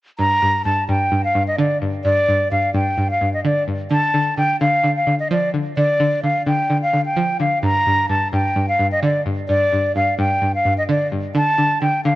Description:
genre	hip hop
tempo	129 BPM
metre	4/4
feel	half-time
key	G minor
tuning	A4 = 440 Hz
part	breathy concert flute	melody	0.2-12.2 s	D5 to Bb5	-18 LUFS	equal	low-pass filter
part	string-like resonator pluck	accompaniment	0.2-12.2 s	G2 to F3	-20 LUFS	equal	chorus, low-pass filter
room	light reverb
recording	dry, gritty hardware recording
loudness	-16 LUFS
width	side -16 dB against mid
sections	0.2-12.2 A section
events	none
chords	0.2 G5; 3.9 Dm; 7.6 G5; 11.4 D5

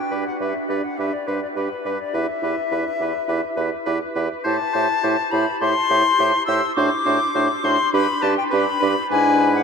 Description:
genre	quick classical-period movement for wind quintet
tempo	103 BPM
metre	4/4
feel	rubato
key	G major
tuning	A4 = 440 Hz
part	silver concert flute	melody	0.0-9.6 s	B4 to E6	-21 LUFS	left 5 dB	none
part	clear oboe	second line	0.1-9.6 s	B4 to C5	-26 LUFS	left 1 dB	none
part	clear clarinet	accompaniment	0.1-9.6 s	E4 to G4	-28 LUFS	right 8 dB	none
part	dark French horn	accompaniment	0.1-9.6 s	D4 to E4	-26 LUFS	equal	none
part	warm bassoon	bass	0.1-9.6 s	E2 to A2	-25 LUFS	right 5 dB	none
room	wet huge ambient reverb, RT60 8.7 s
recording	in a vast, echoing space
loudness	-18 LUFS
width	side -6 dB against mid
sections	0.0-9.6 A section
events	none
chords	0.0 G; 2.1 Em; 4.4 Am7; 6.8 D7/A; 7.9 G; 9.1 E7/G#

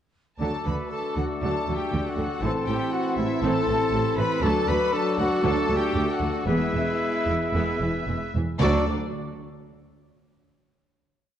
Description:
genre	cinematic, heroic adventure film score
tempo	110-122 BPM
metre	4/4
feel	straight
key	D mixolydian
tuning	A4 = 441 Hz
part	warm symphonic violin section	melody	0.4-8.9 s	D5 to B5	-34 LUFS	left 5 dB	none
part	clear clarinet	second line	0.4-8.8 s	E4 to G#4	-33 LUFS	equal	none
part	clear oboe	second line	0.4-8.8 s	A4 to B4	-36 LUFS	equal	none
part	mellow hollow small flute group	second line	0.4-8.9 s	C6 to E6	-36 LUFS	left 2 dB	none
part	warm studio violin section	second line	0.4-8.9 s	D4 to B4	-36 LUFS	left 4 dB	none
part	warm symphonic viola section	accompaniment	0.4-8.9 s	C3 to D4	-32 LUFS	right 2 dB	none
part	warm French horn section	sustained chords	0.4-8.8 s	E3 to D4	-31 LUFS	equal	none
part	bright trumpet	stabs	0.4-8.8 s	E4 to D5	-29 LUFS	left 1 dB	none
part	rich symphonic double bass section	bass	0.4-8.9 s	E1 to D2	-30 LUFS	right 2 dB	none
part	warm symphonic cello section	bass	0.4-8.9 s	D2 to D3	-31 LUFS	right 2 dB	none
part	timpani	percussion	2.4-3.1, 8.6-8.9 s	A2 to D3	-32 LUFS	equal	none
room	moderate concert hall reverb, RT60 1.8 s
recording	worn, warbling old tape, cassette tape, warbly pitch drift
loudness	-22 LUFS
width	side -10 dB against mid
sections	0.4-8.6 theme; 8.6-10.8 final chord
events	slowing down 3.4-8.6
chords	0.4 D; 2.4 Am; 4.4 D; 6.5 E; 8.6 D

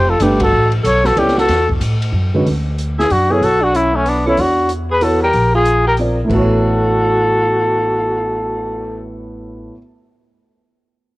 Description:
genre	jazz, small-group swing and bop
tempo	187 BPM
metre	3/4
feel	swing 63% on 8ths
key	A major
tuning	A4 = 440 Hz
part	breathy trumpet	melody	0.0-9.0 s	C#4 to C#5	-16 LUFS	left 1 dB	cassette tape
part	growling alto saxophone	second line	0.0-9.0 s	A3 to A4	-21 LUFS	right 1 dB	cassette tape
part	upright bass	bass	0.0-9.7 s	F1 to A2	-19 LUFS	equal	none
part	dark grand piano	accompaniment	0.2-9.8 s	A2 to D5	-20 LUFS	right 1 dB	cassette tape
part	open jazz drum kit	drums	0.2-8.2 s	crash cymbal, cymbal swell, hi-hat, kick drum, ride cymbal, snare drum	-26 LUFS	equal	cassette tape
room	light reverb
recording	home recording on cassette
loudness	-12 LUFS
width	side -19 dB against mid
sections	0.0-2.5 A section; 2.5-6.3 B section; 6.3-8.2 C section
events	band accent 0.4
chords	0.0 G9; 0.5 A69; 2.5 D; 3.4 B9sus4; 4.4 E9sus4; 5.3 Bb9; 6.3 A69

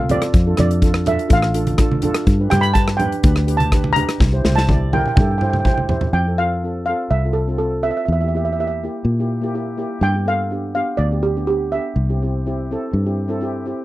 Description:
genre	calypso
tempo	124 BPM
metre	4/4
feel	straight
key	F major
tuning	A4 = 441 Hz
part	steel pan	melody	0.0-12.6 s	G4 to B5	-21 LUFS	right 2 dB	none
part	fingered electric bass	bass	0.0-13.7 s	A1 to Bb2	-20 LUFS	equal	none
part	steel pan	accompaniment	0.1-13.8 s	Bb3 to D5	-24 LUFS	equal	none
part	modern studio drum kit	drums	0.1-6.1 s	hi-hat, kick drum, rim click, snare drum, toms	-18 LUFS	equal	none
part	congas	percussion	0.1-6.1 s	none	-24 LUFS	right 2 dB	none
room	little or no reverb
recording	dry, close 1970s-style studio recording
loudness	-16 LUFS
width	side -16 dB against mid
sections	0.0-6.1 A section; 6.1-13.8 B section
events	drum fill 4.2-6.1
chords	0.3 Dm/F; 2.3 G; 4.2 C; 6.1 F; 8.1 Edim; 10.0 G7; 12.0 C

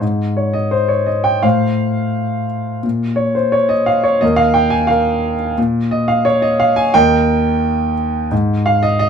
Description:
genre	classical, lyrical solo piano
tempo	87 BPM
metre	4/4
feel	rubato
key	unclear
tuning	A4 = 439 Hz
part	dark grand piano	solo	0.0-9.1 s	Eb2 to Ab5	-13 LUFS	equal	none
room	moderate small room reverb, RT60 0.5 s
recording	none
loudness	-13 LUFS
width	side -7 dB against mid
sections	0.0-9.1 A section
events	none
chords	0.0 N.C.; 1.4 F/A; 2.8 N.C.; 4.2 Eb5; 5.6 N.C.; 6.9 Eb; 8.3 Ab5

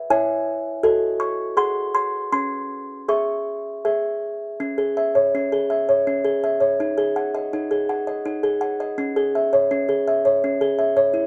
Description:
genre	classical, lullaby for music box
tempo	82 BPM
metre	3/4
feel	straight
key	C# minor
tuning	A4 = 440 Hz
part	music box	solo	0.0-11.3 s	C#4 to C#6	-22 LUFS	equal	none
room	light reverb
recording	none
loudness	-22 LUFS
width	mono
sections	0.0-4.6 A section; 4.6-11.3 B section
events	none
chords	0.1 C#m/E; 0.8 D#m7b5/F#; 1.6 G#7; 2.3 C#m; 6.8 G#5/D#; 9.0 C#m

